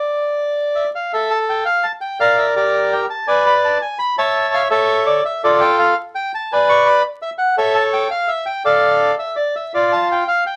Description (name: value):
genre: tango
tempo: 167 BPM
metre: 3/4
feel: rubato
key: unclear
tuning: A4 = 440 Hz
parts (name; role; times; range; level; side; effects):
- bandoneon; solo; 0.0-10.6 s; F4 to C#6; -17 LUFS; equal; none
room: moderate small room reverb, RT60 0.6 s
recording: vinyl crackle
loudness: -17 LUFS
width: mono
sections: 0.0-1.1 A section; 1.1-10.6 A section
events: none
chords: 0.0 N.C.; 2.2 Gm; 3.3 E5; 4.4 A; 5.4 F69; 6.5 Bm69; 7.6 A; 8.6 Dm; 9.7 F69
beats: | 0.03 0.39 0.76 | 1.13 1.49 1.85 | 2.21 2.57 2.92 | 3.28 3.64 4.00 | 4.35 4.71 5.07 | 5.43 5.79 6.15 | 6.51 6.87 7.22 | 7.58 7.93 8.29 | 8.65 9.01 9.37 | 9.73 10.09 10.45